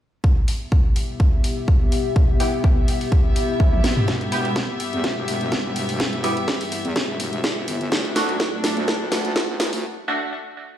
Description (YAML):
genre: bass house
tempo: 125 BPM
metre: 4/4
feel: swing 54% on 16ths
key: E minor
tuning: A4 = 440 Hz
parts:
  - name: dark analog pad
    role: sustained chords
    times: 0.7-9.8 s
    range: G3 to E5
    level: -29 LUFS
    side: left 2 dB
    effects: chorus, sidechain pumping
  - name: electronic kick drum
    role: drums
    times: 0.2-9.5 s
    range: none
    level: -18 LUFS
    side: equal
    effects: high-pass filter on kick, studio reverb
  - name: dark studio string section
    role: texture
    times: 0.2-9.8 s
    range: B3 to F#5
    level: -30 LUFS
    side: left 2 dB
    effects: sidechain pumping
  - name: garage drum kit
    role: drums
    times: 0.5-9.8 s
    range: hi-hat, snare drum, toms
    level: -24 LUFS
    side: equal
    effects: studio reverb
  - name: band-passed chord stab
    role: stabs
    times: 2.4-10.3 s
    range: A3 to G4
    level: -26 LUFS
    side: right 1 dB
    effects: phaser, lush chorus, sidechain pumping, ping-pong delay
  - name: swell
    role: sound effects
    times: 3.3-4.1 s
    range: none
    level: -29 LUFS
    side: right 4 dB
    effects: none
  - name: wobble bass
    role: bass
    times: 4.1-9.8 s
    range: E1 to E2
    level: -27 LUFS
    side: equal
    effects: chorus, overdrive, sidechain pumping, high-pass filter
room: light reverb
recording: played on a big sound system in a bare room, stone room reverb, high-pass filter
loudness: -19 LUFS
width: side -11 dB against mid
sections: 0.2-4.1 A section; 4.1-10.8 B section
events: fade-in on string section 0.2-4.1; swell 3.3-4.1; drum fill 3.6-4.1, 4.1-9.8; build-up 4.1-10.8; break 9.8-10.8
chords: 0.2 Em; 7.9 D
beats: | 0.24 0.72 1.20 1.68 | 2.16 2.64 3.12 3.60 | 4.08 4.56 5.04 5.52 | 6.00 6.48 6.96 7.44 | 7.92 8.40 8.88 9.36 | 9.84